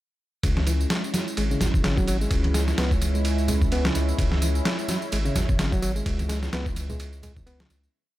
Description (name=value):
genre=breakbeat, breaks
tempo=128 BPM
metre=4/4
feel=swing 57% on 16ths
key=C# minor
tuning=A4 = 442 Hz
part: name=phased analog pad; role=sustained chords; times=0.4-7.9 s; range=G#3 to E4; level=-32 LUFS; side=equal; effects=phaser, chorus, sidechain pumping
part: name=overdriven reed electric piano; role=riff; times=0.4-7.7 s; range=C#3 to B3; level=-30 LUFS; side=equal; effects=tube saturation, tape echo
part: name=saturated sub bass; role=bass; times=0.4-7.9 s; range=G#1 to C#2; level=-25 LUFS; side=equal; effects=none
part: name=dusty soul sampler-style drum kit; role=drums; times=0.4-7.8 s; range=kick drum, ride cymbal, snare drum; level=-26 LUFS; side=equal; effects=overdrive
part: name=tambourine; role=drums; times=0.4-7.9 s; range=none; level=-38 LUFS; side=right 1 dB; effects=none
part: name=congas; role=percussion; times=0.6-7.5 s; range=none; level=-33 LUFS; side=right 1 dB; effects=none
room=digital ambience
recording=none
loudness=-22 LUFS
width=side -15 dB against mid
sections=0.4-7.9 groove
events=fade-out 5.4-7.9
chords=0.4 C#m